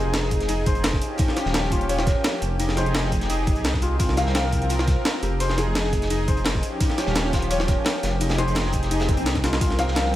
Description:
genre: liquid drum and bass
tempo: 171 BPM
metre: 4/4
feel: straight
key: F minor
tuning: A4 = 443 Hz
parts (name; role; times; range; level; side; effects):
- lush unison pad; sustained chords; 0.0-10.2 s; F3 to Bb4; -28 LUFS; equal; chorus, sidechain pumping
- concert harp; arpeggios; 0.0-10.2 s; Eb4 to G5; -28 LUFS; left 3 dB; digital delay
- dark detuned saw bass; bass; 0.0-10.2 s; Eb1 to C2; -25 LUFS; equal; none
- breakbeat sampler-style drum kit; drums; 0.1-10.0 s; hi-hat, ride cymbal, snare drum; -27 LUFS; equal; studio reverb
- crunchy breakbeat drum kit; drums; 0.1-10.1 s; hi-hat, snare drum; -34 LUFS; equal; high-pass filter on hats, studio reverb, high-pass filter on snare, high-pass filter on room
- electronic kick drum; drums; 0.3-9.7 s; none; -24 LUFS; equal; studio reverb
- swell; sound effects; 9.0-9.6 s; none; -33 LUFS; left 1 dB; none
room: light reverb, small room ambience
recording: none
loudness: -20 LUFS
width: side -14 dB against mid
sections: 0.0-10.2 A section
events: swell 9.0-9.6; drum fill 9.3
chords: 0.0 Fm7; 1.0 Eb9; 2.6 Fm9; 4.0 C7sus4; 5.4 Fm7; 6.6 Eb9; 8.2 Fm9; 9.6 C7sus4

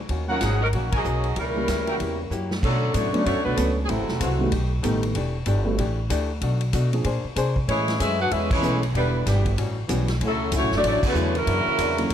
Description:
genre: jazz, big band swing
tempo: 190 BPM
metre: 4/4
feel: swing 62% on 8ths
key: B minor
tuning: A4 = 441 Hz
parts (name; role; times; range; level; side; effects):
- upright bass; bass; 0.0-12.1 s; E1 to B#2; -25 LUFS; equal; none
- archtop guitar, miked and amplified; accompaniment; 0.1-12.1 s; F#2 to C#5; -31 LUFS; left 5 dB; none
- swinging big-band drum kit; drums; 0.1-12.1 s; crash cymbal, hi-hat, kick drum, ride cymbal, snare drum; -30 LUFS; equal; none
- mellow saxophone section; melody; 0.3-4.5, 7.7-12.1 s; Eb3 to F#5; -25 LUFS; equal; none
- warm grand piano; accompaniment; 0.3-12.1 s; D3 to A4; -28 LUFS; right 2 dB; none
- clear trumpet section; stabs; 0.3-2.0 s; Eb4 to Ab5; -31 LUFS; equal; none
- warm trombone section; second line; 1.4-4.5, 7.7-12.1 s; A2 to F#4; -30 LUFS; right 2 dB; none
room: light reverb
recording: none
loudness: -21 LUFS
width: side -9 dB against mid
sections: 0.0-2.6 A section; 2.6-12.1 B section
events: band accent 0.9, 8.5, 11.0; drum fill 2.3-2.6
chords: 0.1 Ebm7; 1.4 Gb7b9; 2.6 Bm9; 3.9 F#m7b5; 4.5 B7b13; 5.1 Em11; 6.4 Bm7; 7.0 A#9; 7.7 Amaj9; 8.9 Em7; 9.6 A13; 10.2 Dmaj9; 11.5 F#7b13

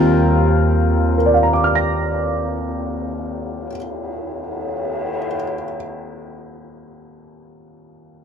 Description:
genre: jazz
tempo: 40 BPM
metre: 4/4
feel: swing 67% on 8ths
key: Eb major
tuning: A4 = 439 Hz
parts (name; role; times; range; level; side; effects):
- warm upright piano; accompaniment; 0.0-8.2 s; Eb2 to Bb6; -19 LUFS; left 1 dB; none
- upright bass; bass; 0.0-3.7 s; Eb2; -20 LUFS; right 2 dB; none
- cymbal swell; drums; 0.7-5.4 s; none; -29 LUFS; left 1 dB; none
room: little or no reverb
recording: none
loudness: -17 LUFS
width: side -7 dB against mid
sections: 0.0-5.7 A section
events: none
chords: 0.0 Eb69

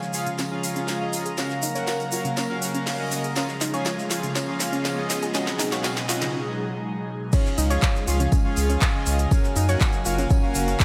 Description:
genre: progressive house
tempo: 121 BPM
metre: 4/4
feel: straight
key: Db mixolydian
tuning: A4 = 440 Hz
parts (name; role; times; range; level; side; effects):
- airy breathy pad; sustained chords; 0.0-10.8 s; Cb3 to F5; -32 LUFS; equal; chorus, phaser, sidechain pumping
- damped 70s drum kit; drums; 0.0-10.8 s; hi-hat, snare drum, tambourine; -42 LUFS; equal; none
- tube shaker; percussion; 0.0-10.8 s; none; -39 LUFS; equal; none
- riser; sound effects; 3.0-6.3 s; none; -41 LUFS; equal; none
- drifting glass-harmonics texture; texture; 0.5-10.8 s; Ab5 to Bb5; -40 LUFS; equal; chorus, built-in reverb, sidechain pumping
- soft round pluck; arpeggios; 0.1-10.8 s; Db3 to Db6; -33 LUFS; equal; chorus, sidechain pumping, dub echo
- soft supersaw; stabs; 0.1-10.8 s; Cb4 to Ab5; -33 LUFS; equal; sidechain pumping, dub echo
- house drum kit; drums; 0.1-10.8 s; crash cymbal, handclaps, hi-hat, snare drum; -32 LUFS; equal; high-pass filter on snare, sidechain pumping on hats, high-pass filter on hats, sidechain pumping on cymbals, high-pass filter on cymbals
- electronic kick drum; drums; 7.3-10.8 s; none; -23 LUFS; equal; none
- round analog bass; bass; 7.6-10.8 s; Gb1 to Gb2; -25 LUFS; equal; sidechain pumping
room: light reverb, studio reverb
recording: none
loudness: -24 LUFS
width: mono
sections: 0.0-7.3 A section; 7.3-10.8 B section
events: build-up 0.0-7.3; drum fill 0.0-6.3; filter sweep on synth pluck 0.0-7.3; break 6.3-7.3; drop 7.3-10.8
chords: 0.0 Db; 1.4 Gbmaj7; 3.4 Db; 5.3 Abm7; 7.3 Db; 9.3 Gbmaj7

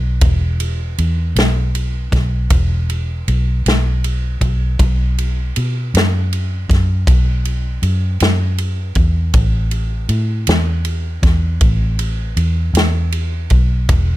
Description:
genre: slow blues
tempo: 53 BPM (dotted quarters)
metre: 12/8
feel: straight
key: unclear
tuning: A4 = 440 Hz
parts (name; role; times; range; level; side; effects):
- vintage muted fingered electric bass; bass; 0.0-14.2 s; E1 to B2; -16 LUFS; equal; none
- natural country drum kit; drums; 0.2-14.1 s; kick drum, ride cymbal, snare drum; -18 LUFS; equal; none
room: little or no reverb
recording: none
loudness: -14 LUFS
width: side -16 dB against mid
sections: 0.0-14.2 A section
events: none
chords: none

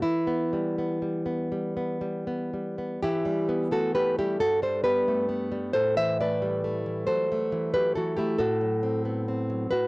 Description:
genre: romantic piece for solo classical guitar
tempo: 38-46 BPM (dotted quarters)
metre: 6/8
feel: rubato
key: E minor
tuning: A4 = 440 Hz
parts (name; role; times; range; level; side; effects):
- nylon-string guitar; solo; 0.0-9.9 s; G2 to E5; -24 LUFS; equal; cassette tape
room: studio ambience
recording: home recording on cassette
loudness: -24 LUFS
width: side -24 dB against mid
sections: 0.0-3.0 A section; 3.0-9.9 B section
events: none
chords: 0.0 Em; 4.4 G; 5.7 Am; 8.4 F#dim/A

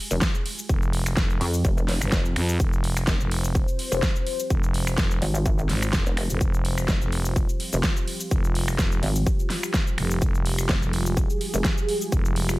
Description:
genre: bass house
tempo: 126 BPM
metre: 4/4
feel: swing 54% on 16ths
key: F minor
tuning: A4 = 438 Hz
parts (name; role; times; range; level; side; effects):
- sweeping resonant pad; sustained chords; 0.1-12.6 s; F4 to C5; -33 LUFS; left 1 dB; chorus, sidechain pumping
- pulsing pluck wobble bass; bass; 0.1-11.6 s; F1 to F2; -24 LUFS; equal; chorus, overdrive, sidechain pumping
- big-room dance drum kit; drums; 0.1-12.6 s; finger snaps, hi-hat, shaker, snare drum; -28 LUFS; equal; overdrive, studio reverb
- electronic kick drum; drums; 0.2-12.2 s; none; -24 LUFS; equal; overdrive, studio reverb
- growling FM bass; bass; 0.7-12.6 s; F1 to F2; -25 LUFS; equal; tube saturation, sidechain pumping
room: digital ambience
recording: none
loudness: -21 LUFS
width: side -19 dB against mid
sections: 0.0-12.6 A section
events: none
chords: 0.0 Fmadd9

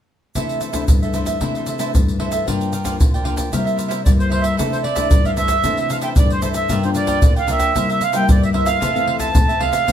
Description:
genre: samba and choro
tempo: 114 BPM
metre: 4/4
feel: straight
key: C major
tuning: A4 = 439 Hz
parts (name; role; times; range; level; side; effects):
- cavaquinho; accompaniment; 0.4-9.9 s; E4 to G5; -25 LUFS; right 5 dB; none
- nylon-string guitar; accompaniment; 0.4-9.9 s; F2 to E4; -22 LUFS; left 4 dB; none
- tube shaker, surdo and pandeiro; percussion; 0.4-9.9 s; none; -18 LUFS; equal; none
- accordion; melody; 4.0-9.9 s; C5 to A5; -20 LUFS; right 3 dB; none
room: wet stone room reverb, RT60 0.9 s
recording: band playing live in one room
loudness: -15 LUFS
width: side -10 dB against mid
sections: 0.4-4.6 A section; 4.6-9.9 B section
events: none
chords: 0.4 C69; 2.5 Gm7; 3.5 C7; 4.6 C69; 6.7 Gm7; 7.8 C7; 8.8 Fmaj7

